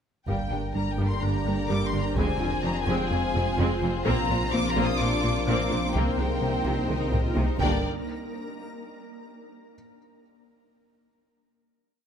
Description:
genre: cinematic, hybrid orchestral and electronic film score.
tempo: 127 BPM.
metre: 4/4.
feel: straight.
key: G phrygian.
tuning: A4 = 440 Hz.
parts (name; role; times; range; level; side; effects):
warm symphonic violin section; melody; 0.3-7.9 s; G5 to Eb6; -32 LUFS; left 3 dB; none.
warm symphonic violin section; second line; 0.3-7.9 s; F4 to D5; -34 LUFS; left 5 dB; none.
rich symphonic viola section; accompaniment; 0.3-7.9 s; G3 to F4; -33 LUFS; right 1 dB; none.
dark trombone section; sustained chords; 0.3-7.8 s; C3 to Bb3; -37 LUFS; right 6 dB; none.
mellow French horn section; sustained chords; 0.3-7.8 s; Bb3 to F4; -35 LUFS; left 5 dB; none.
shimmering ambient pad; sustained chords; 0.9-7.9 s; D3 to C5; -33 LUFS; equal; chorus, built-in reverb.
thumb-piano-like synth pluck; arpeggios; 0.3-7.5 s; C3 to Bb4; -38 LUFS; right 5 dB; none.
rubbery square bass; riff; 0.3-7.5 s; C2 to Bb3; -32 LUFS; left 2 dB; none.
rich symphonic cello section; bass; 0.3-7.9 s; F2 to C3; -34 LUFS; right 3 dB; none.
rich symphonic double bass section; bass; 0.3-7.9 s; F1 to C2; -34 LUFS; right 3 dB; none.
sub bass with octave; bass; 0.3-7.9 s; F1 to C2; -33 LUFS; equal; none.
taiko ensemble; drums; 0.3-8.5 s; none; -32 LUFS; equal; none.
felt-muted upright piano; texture; 0.3-2.2, 5.7-7.9 s; Bb3 to F5; -42 LUFS; left 1 dB; none.
room: light reverb.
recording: close, detailed microphones.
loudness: -23 LUFS.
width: side -8 dB against mid.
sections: 0.3-7.8 theme; 7.8-9.7 final hit.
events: drum fill 7.1-7.8.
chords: 0.3 Gm; 2.2 Fm; 4.1 Bbadd9; 5.9 Cm7; 7.6 Gm; 7.8 N.C..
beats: | 0.28 0.75 1.22 1.70 | 2.17 2.64 3.11 3.59 | 4.06 4.53 5.00 5.47 | 5.95 6.42 6.89 7.37 | 7.84 8.31.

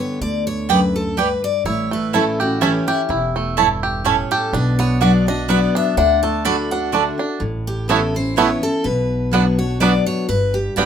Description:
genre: bluegrass.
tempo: 125 BPM.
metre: 3/4.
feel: swing 54% on 8ths.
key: unclear.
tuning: A4 = 440 Hz.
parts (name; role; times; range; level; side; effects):
picked steel-string acoustic guitar; melody; 0.0-10.9 s; E4 to B5; -22 LUFS; left 4 dB; none.
picked steel-string acoustic guitar; accompaniment; 0.0-10.9 s; E2 to G4; -21 LUFS; left 2 dB; none.
upright bass; bass; 0.2-10.9 s; E1 to D2; -24 LUFS; right 1 dB; none.
mandolin; stabs; 0.7-10.9 s; A3 to A5; -18 LUFS; right 10 dB; none.
bluegrass banjo; arpeggios; 1.7-10.9 s; G3 to G4; -22 LUFS; right 5 dB; none.
room: wet studio reverb, RT60 0.5 s.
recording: minimal, uncompressed stereo recording.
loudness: -16 LUFS.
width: side -8 dB against mid.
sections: 0.0-7.4 A section; 7.4-10.9 B section.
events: none.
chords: 0.0 G; 1.7 A; 4.5 Bm; 6.0 D; 7.4 Aadd9; 8.9 Bm; 10.3 G.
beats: | 0.21 0.69 1.17 | 1.65 2.13 2.61 | 3.09 3.57 4.05 | 4.53 5.01 5.49 | 5.97 6.45 6.93 | 7.41 7.89 8.37 | 8.85 9.33 9.81 | 10.29 10.77.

